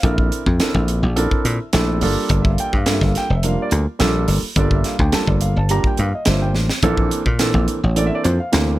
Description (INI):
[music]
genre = electric jazz fusion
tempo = 106 BPM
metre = 4/4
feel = straight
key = unclear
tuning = A4 = 440 Hz
[part]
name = dark concert grand piano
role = accompaniment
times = 0.0-8.8 s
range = E3 to Bb5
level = -21 LUFS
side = right 2 dB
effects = none
[part]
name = dry thumbed slap bass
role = bass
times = 0.0-8.8 s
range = F1 to Bb2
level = -18 LUFS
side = equal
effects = none
[part]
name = crisp fusion drum kit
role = drums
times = 0.0-8.7 s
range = hi-hat, kick drum, snare drum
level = -21 LUFS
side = equal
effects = none
[sound]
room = light reverb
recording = none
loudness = -16 LUFS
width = side -16 dB against mid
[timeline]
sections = 0.0-8.8 A section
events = drum fill 6.5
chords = 0.0 Bbmaj9#11; 2.0 Gm9; 6.8 Bbmaj9#11